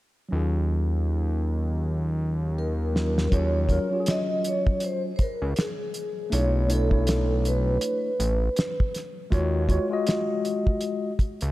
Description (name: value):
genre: hip hop, jazz-hop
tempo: 80 BPM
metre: 4/4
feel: swing 58% on 16ths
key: unclear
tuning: A4 = 444 Hz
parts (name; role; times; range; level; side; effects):
- mellow tine electric piano; accompaniment; 0.3-11.1 s; Gb3 to Eb5; -29 LUFS; left 1 dB; slow stereo tremolo
- fat analog bass; bass; 0.3-11.5 s; A1 to Eb2; -24 LUFS; equal; none
- vibraphone with soft mallets; melody; 2.6-8.9 s; Ab4 to Eb5; -29 LUFS; equal; diffuse ambient delay
- cloth-damped thuddy drum kit; drums; 3.0-11.5 s; hi-hat, kick drum, snare drum; -26 LUFS; equal; none
room: moderate plate reverb, RT60 2.7 s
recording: dreamy mix soaked in reverb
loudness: -23 LUFS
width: side -16 dB against mid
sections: 0.3-3.3 A section; 3.3-11.5 B section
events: drum fill 1.8-3.3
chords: 0.3 Ebm11; 6.3 Bm11; 9.3 Ebm11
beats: | 0.32 1.07 1.82 2.57 | 3.32 4.07 4.82 5.57 | 6.32 7.07 7.82 8.57 | 9.32 10.07 10.82